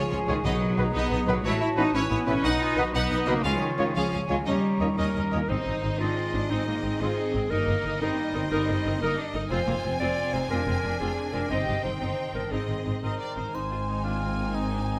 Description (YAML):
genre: cinematic, heroic adventure film score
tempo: 119 BPM (dotted quarters)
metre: 6/8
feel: straight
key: B lydian, Ab lydian from 5.5 s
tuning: A4 = 440 Hz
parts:
  - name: clear symphonic violin section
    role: melody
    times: 0.0-15.0 s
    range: G#4 to Ab5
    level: -38 LUFS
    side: equal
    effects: none
  - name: clear clarinet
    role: second line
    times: 0.0-13.0 s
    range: Eb4 to Eb5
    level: -34 LUFS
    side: equal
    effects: none
  - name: hollow small flute group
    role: second line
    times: 0.0-5.3 s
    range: F#5 to B5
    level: -39 LUFS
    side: equal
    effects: none
  - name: mellow cor anglais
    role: second line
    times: 0.0-5.5, 13.0-15.0 s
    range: Eb4 to D#5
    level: -38 LUFS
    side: equal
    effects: none
  - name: rich chamber violin section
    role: second line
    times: 0.0-15.0 s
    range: G3 to C5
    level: -42 LUFS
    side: equal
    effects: none
  - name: rich symphonic viola section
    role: accompaniment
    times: 0.0-15.0 s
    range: Bb3 to Bb4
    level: -38 LUFS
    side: equal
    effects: none
  - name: concert harp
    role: arpeggios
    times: 0.0-15.0 s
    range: F2 to D#5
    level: -39 LUFS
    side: equal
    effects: none
  - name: rich symphonic cello section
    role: bass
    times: 0.0-15.0 s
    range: Ab2 to F4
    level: -33 LUFS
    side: equal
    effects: none
  - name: rich symphonic double bass section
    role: bass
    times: 0.1-15.0 s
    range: F1 to D#2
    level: -34 LUFS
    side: equal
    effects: none
  - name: clear trombone section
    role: sustained chords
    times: 0.3-5.4 s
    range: A#2 to B3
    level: -38 LUFS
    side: equal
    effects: none
  - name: dark French horn section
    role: sustained chords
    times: 0.3-5.4, 13.5-15.0 s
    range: Eb3 to G#4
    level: -38 LUFS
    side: equal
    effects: none
  - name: mellow trumpet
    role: stabs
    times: 0.3-5.4 s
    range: B4 to D#5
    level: -37 LUFS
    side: equal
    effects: none
  - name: timpani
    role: percussion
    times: 0.4-0.9, 5.5-6.0 s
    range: Ab2 to B2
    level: -39 LUFS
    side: equal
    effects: none
  - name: triangle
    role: percussion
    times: 13.5-14.2 s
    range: none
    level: barely audible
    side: none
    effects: none
room: moderate scoring stage reverb, RT60 1.9 s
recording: none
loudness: -27 LUFS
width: mono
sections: 0.0-5.5 A section; 5.5-13.5 B section; 13.5-15.0 B section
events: none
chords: 0.4 B; 1.4 Aadd9; 2.4 B; 3.4 C#; 4.5 D#7; 5.5 Ab; 7.5 Eb/G; 9.5 Fm; 11.5 Cm/G; 12.5 Ab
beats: | 0.45 0.94 | 1.44 1.94 | 2.44 2.94 | 3.44 3.95 | 4.46 4.97 | 5.49 5.99 | 6.50 7.00 | 7.50 8.00 | 8.51 9.01 | 9.51 10.01 | 10.50 11.00 | 11.51 12.01 | 12.52 13.03 | 13.54 14.05 | 14.56